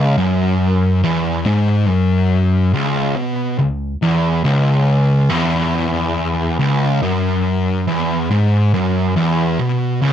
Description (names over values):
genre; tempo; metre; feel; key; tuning
metal; 70 BPM; 4/4; straight; C# minor; A4 = 440 Hz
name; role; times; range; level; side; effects
fuzz guitar; solo; 0.0-10.1 s; C#2 to B2; -14 LUFS; equal; distortion
room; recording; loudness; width
little or no reverb; dry, close 1970s-style studio recording; -14 LUFS; side -9 dB against mid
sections
0.0-10.1 A section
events
none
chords
none